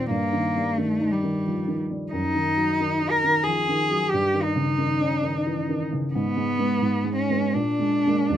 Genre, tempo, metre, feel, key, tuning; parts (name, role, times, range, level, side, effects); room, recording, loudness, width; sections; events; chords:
classical, romantic duo for cello and grand piano; 68-92 BPM; 3/4; rubato; Eb minor; A4 = 439 Hz
rich cello; melody; 0.0-8.4 s; G3 to Bb4; -23 LUFS; left 1 dB
dark grand piano; accompaniment; 0.0-8.4 s; Eb2 to Eb4; -25 LUFS; right 1 dB
light reverb; close, detailed microphones; -21 LUFS; side -10 dB against mid
0.0-8.4 A section
0.1 Eb/G; 2.1 Ebm/Gb; 4.1 Eb7/G; 6.1 Abm; 7.5 Bb7